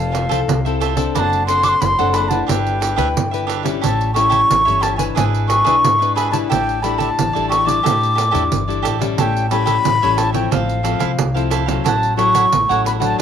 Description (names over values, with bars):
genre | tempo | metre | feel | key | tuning
samba and choro | 90 BPM | 4/4 | straight | unclear | A4 = 440 Hz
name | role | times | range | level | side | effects
wooden flute | melody | 0.0-13.2 s | F5 to D6 | -17 LUFS | left 1 dB | none
cavaquinho | accompaniment | 0.0-13.2 s | D4 to F#5 | -23 LUFS | right 11 dB | none
nylon-string guitar | accompaniment | 0.0-13.2 s | A2 to B4 | -23 LUFS | left 13 dB | none
upright bass | bass | 0.0-13.1 s | F1 to A2 | -22 LUFS | equal | none
pandeiro | percussion | 0.0-13.2 s | none | -23 LUFS | right 8 dB | none
room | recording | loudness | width
wet spring reverb, RT60 1.1 s, studio reverb | 1960s-style stereo with parts hard left and right | -14 LUFS | side -8 dB against mid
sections
0.0-13.2 A section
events
none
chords
0.0 Fmaj7; 1.2 D7/F#; 2.5 G6; 3.8 A7; 5.2 E7/G#; 6.5 A7sus4; 9.2 A7; 10.5 Fmaj7/A; 11.9 F#m7/A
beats
0.48 | 1.15 1.82 2.49 3.16 | 3.83 4.50 5.17 5.84 | 6.51 7.18 7.85 8.52 | 9.19 9.86 10.53 11.20 | 11.87 12.54 13.21